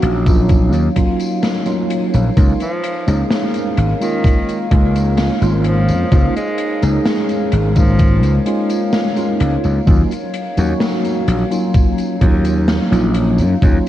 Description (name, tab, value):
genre	vaporwave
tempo	64 BPM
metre	4/4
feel	straight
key	Eb minor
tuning	A4 = 440 Hz
part	mellow tine electric piano	accompaniment	0.0-13.9 s	Gb3 to Ab4	-18 LUFS	equal	medium stereo tremolo, lush chorus, analog delay
part	warbly tape-like pad	sustained chords	0.0-13.9 s	Gb3 to F5	-25 LUFS	left 1 dB	chorus, built-in reverb
part	gritty slap bass	bass	0.0-13.8 s	Ab1 to Gb2	-15 LUFS	equal	overdrive
part	swinging big-band drum kit	drums	0.0-13.9 s	hi-hat, snare drum, tambourine	-24 LUFS	equal	vintage 12-bit sampler grit, studio reverb
part	electronic kick drum	drums	0.3-13.8 s	none	-13 LUFS	equal	vintage 12-bit sampler grit, studio reverb
part	clear tenor saxophone	melody	2.6-8.5 s	Eb3 to Ab3	-25 LUFS	equal	vintage 12-bit sampler grit, tape echo
room	moderate lush hall reverb, RT60 2.3 s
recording	dreamy mix soaked in reverb, cassette tape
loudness	-13 LUFS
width	side -13 dB against mid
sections	0.0-13.9 A section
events	none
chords	0.0 Ebm9; 2.4 Db69; 9.9 Ebm9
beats	0.49 1.43 | 2.37 3.31 4.24 5.18 | 6.12 7.06 7.99 8.93 | 9.87 10.81 11.74 12.68 | 13.62